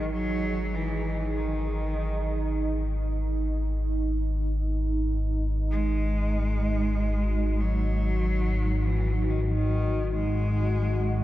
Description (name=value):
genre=dark ambient drone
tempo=48 BPM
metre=4/4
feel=straight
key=unclear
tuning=A4 = 440 Hz
part: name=rich cello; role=melody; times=0.0-11.2 s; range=D#3 to G#3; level=-32 LUFS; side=equal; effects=tape echo
part: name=deep dark ambient pad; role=sustained chords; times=0.0-11.2 s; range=D#4 to D#5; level=-32 LUFS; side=right 3 dB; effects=chorus, built-in reverb
part: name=deep rumbling drone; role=drone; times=0.0-11.2 s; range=G#1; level=-27 LUFS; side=equal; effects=built-in reverb, wide subtle chorus
room=moderate cathedral reverb, RT60 6.4 s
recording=dark, warm production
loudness=-25 LUFS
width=side -14 dB against mid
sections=0.0-11.2 A section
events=none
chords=0.0 G#5